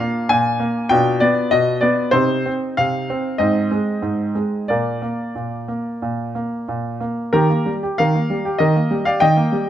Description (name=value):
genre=classical-period piano sonatina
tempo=89-100 BPM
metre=4/4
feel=rubato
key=Eb major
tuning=A4 = 440 Hz
part: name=clear baby grand piano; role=solo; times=0.0-9.7 s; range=Ab2 to Ab5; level=-17 LUFS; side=equal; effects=none
room=moderate recital hall reverb, RT60 1.4 s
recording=close, detailed microphones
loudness=-17 LUFS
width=side -11 dB against mid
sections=0.0-7.3 A section; 7.3-9.7 B section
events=none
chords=0.0 Bb7; 0.9 Bdim; 2.1 Cm; 3.4 Ab; 4.7 N.C.; 7.3 Eb